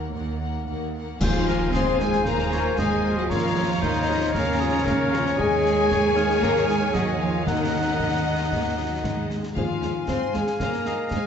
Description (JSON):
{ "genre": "cinematic, heroic adventure film score", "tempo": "115 BPM", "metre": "4/4", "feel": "straight", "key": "unclear", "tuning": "A4 = 440 Hz", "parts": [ { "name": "warm symphonic violin section", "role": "melody", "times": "0.0-11.3 s", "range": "Db5 to C6", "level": "-34 LUFS", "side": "left 5 dB", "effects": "none" }, { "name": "warm symphonic violin section", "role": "second line", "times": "0.0-11.2 s", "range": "Ab4 to Bb5", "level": "-33 LUFS", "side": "left 3 dB", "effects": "none" }, { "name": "warm symphonic viola section", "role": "accompaniment", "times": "0.0-11.2 s", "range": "Eb3 to Bb4", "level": "-32 LUFS", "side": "right 1 dB", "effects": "none" }, { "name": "warm French horn section", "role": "sustained chords", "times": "0.0-11.3 s", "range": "Gb3 to C5", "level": "-26 LUFS", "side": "left 3 dB", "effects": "none" }, { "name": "rich studio double bass section", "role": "bass", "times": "0.0-11.2 s", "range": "Eb2", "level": "-30 LUFS", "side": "right 3 dB", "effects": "none" }, { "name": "rich symphonic cello section", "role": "bass", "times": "0.0-11.3 s", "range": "Eb2 to C4", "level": "-29 LUFS", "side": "right 4 dB", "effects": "none" }, { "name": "clear clarinet", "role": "second line", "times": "1.2-11.3 s", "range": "C5 to Gb5", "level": "-32 LUFS", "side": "left 2 dB", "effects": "none" }, { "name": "hollow concert flute", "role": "second line", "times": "1.2-11.3 s", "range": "Ab5 to Bb5", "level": "-34 LUFS", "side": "left 2 dB", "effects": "none" }, { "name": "warm oboe", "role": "second line", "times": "1.2-11.3 s", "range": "Ab4 to Gb5", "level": "-32 LUFS", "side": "right 1 dB", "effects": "none" }, { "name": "clash cymbals, concert bass drum and concert snare drum", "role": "drums", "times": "1.2-11.3 s", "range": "none", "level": "-31 LUFS", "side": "equal", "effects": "none" }, { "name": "clash cymbals and concert bass drum", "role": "percussion", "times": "1.2-2.2 s", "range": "none", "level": "-30 LUFS", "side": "equal", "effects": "none" }, { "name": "timpani", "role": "percussion", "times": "1.2-2.0, 7.5-10.3 s", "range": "Eb3", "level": "-31 LUFS", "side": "left 1 dB", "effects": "none" } ], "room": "moderate scoring stage reverb, RT60 1.9 s", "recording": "nothing above 7.8 kHz", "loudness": "-21 LUFS", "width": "side -7 dB against mid", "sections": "0.0-1.2 A section; 1.2-11.3 B section", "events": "band accent 1.2-1.7", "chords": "0.0 Ebm; 1.2 Fm/Eb; 3.3 Bbm/Eb; 5.4 Absus4/Eb; 7.5 Ebm; 9.6 Fm/Eb" }